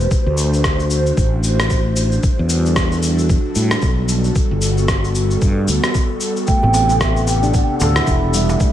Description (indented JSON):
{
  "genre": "organic downtempo",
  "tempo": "113 BPM",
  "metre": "4/4",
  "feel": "swing 59% on 16ths",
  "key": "A dorian",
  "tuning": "A4 = 440 Hz",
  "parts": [
    { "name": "airy breathy pad", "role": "sustained chords", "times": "0.0-8.7 s", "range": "C3 to C5", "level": "-22 LUFS", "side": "equal", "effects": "chorus, sidechain pumping" },
    { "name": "fretless electric bass", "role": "bass", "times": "0.0-8.5 s", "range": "E1 to A2", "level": "-17 LUFS", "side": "equal", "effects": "none" },
    { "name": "electronic cabasa and rim click", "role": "drums", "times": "0.0-8.7 s", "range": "none", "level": "-22 LUFS", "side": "left 1 dB", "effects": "none" },
    { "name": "electronic kick drum", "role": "drums", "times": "0.1-8.7 s", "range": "none", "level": "-18 LUFS", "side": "equal", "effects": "none" },
    { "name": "mellow bass bansuri", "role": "melody", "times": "6.5-8.7 s", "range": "E5 to G5", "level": "-20 LUFS", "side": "right 3 dB", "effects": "analog delay" },
    { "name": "handpan", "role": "arpeggios", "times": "6.5-8.7 s", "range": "G3 to A4", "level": "-22 LUFS", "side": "equal", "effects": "analog delay" },
    { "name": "darbuka", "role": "percussion", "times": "6.5-8.6 s", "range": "none", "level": "-25 LUFS", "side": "right 2 dB", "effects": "none" }
  ],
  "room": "moderate plate reverb, RT60 1.8 s",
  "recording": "dreamy mix soaked in reverb",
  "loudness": "-14 LUFS",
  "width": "side -11 dB against mid",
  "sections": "0.0-8.7 A section",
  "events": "none",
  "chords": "0.1 D7; 2.2 Em11; 4.4 Gmaj9; 6.5 Am9"
}